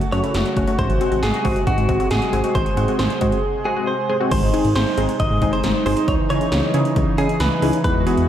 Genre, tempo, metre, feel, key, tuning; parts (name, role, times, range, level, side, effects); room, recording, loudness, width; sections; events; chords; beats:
synth-pop; 136 BPM; 4/4; straight; A4 = 443 Hz
chorused pulse-width pad; sustained chords; 0.0-8.3 s; B#2 to G#4; -23 LUFS; equal; shimmer reverb
80s electronic pad drums; drums; 0.0-8.3 s; crash cymbal, hi-hat, kick drum, snare drum; -23 LUFS; equal
direct-recorded clean electric guitar; melody; 0.1-8.3 s; F#4 to D#5; -24 LUFS; right 1 dB; diffuse ambient delay, shimmer reverb
funky polysynth comp; accompaniment; 0.1-8.2 s; G#3 to G#4; -24 LUFS; left 1 dB; chorus, shimmer reverb
fat analog bass; bass; 0.1-8.3 s; F#1 to C#3; -22 LUFS; equal
moderate plate reverb, RT60 2.0 s; dreamy mix soaked in reverb; -17 LUFS; side -10 dB against mid
0.0-4.3 A section; 4.3-8.3 B section
0.0 F#m; 0.8 G#7; 4.3 G#; 6.1 C#madd9
0.34 | 0.79 1.23 1.67 2.11 | 2.55 2.99 3.43 3.87 | 4.32 4.76 5.20 5.64 | 6.08 6.52 6.96 7.40 | 7.84 8.29